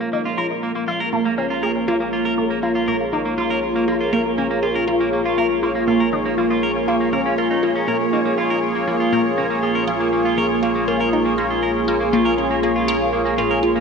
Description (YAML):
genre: ambient, sequencer-driven space music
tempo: 120 BPM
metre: 4/4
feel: straight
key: Bb minor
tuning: A4 = 436 Hz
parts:
  - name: sweeping resonant pad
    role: sustained chords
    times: 0.0-13.8 s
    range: Bb3 to Db5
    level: -20 LUFS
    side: equal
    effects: chorus
  - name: clean electric guitar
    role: arpeggios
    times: 0.0-13.8 s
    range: Bb3 to Bb4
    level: -24 LUFS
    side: right 2 dB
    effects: auto-pan, analog delay
  - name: resonant blip pluck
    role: riff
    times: 0.0-13.7 s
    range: Bb3 to Bb4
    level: -24 LUFS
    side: equal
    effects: phaser, analog delay
  - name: analog drone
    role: bass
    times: 1.0-13.8 s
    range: Bb1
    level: -39 LUFS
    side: equal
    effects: chorus
  - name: bubbling stepped-filter texture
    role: texture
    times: 0.0-13.8 s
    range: Bb3 to Bb4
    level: -28 LUFS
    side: right 2 dB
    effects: chorus, built-in reverb
room: wet scoring stage reverb, RT60 1.9 s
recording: none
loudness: -17 LUFS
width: side -5 dB against mid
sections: 0.0-13.8 A section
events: fade-in on synth drone 0.0-13.8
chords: 0.0 Bbm7